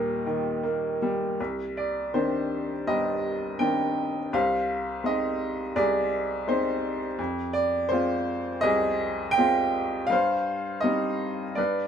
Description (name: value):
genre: classical, lyrical solo piano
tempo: 82 BPM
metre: 4/4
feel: rubato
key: C minor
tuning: A4 = 442 Hz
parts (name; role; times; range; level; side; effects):
- bright upright piano; solo; 0.0-11.9 s; G1 to G5; -24 LUFS; equal; none
room: light reverb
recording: minimal, uncompressed stereo recording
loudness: -24 LUFS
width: side -8 dB against mid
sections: 0.0-1.4 A section; 1.4-11.9 B section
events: none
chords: 0.0 Eb; 1.4 Cmadd9; 4.3 Ab/C; 7.2 Fm; 10.1 Cm/G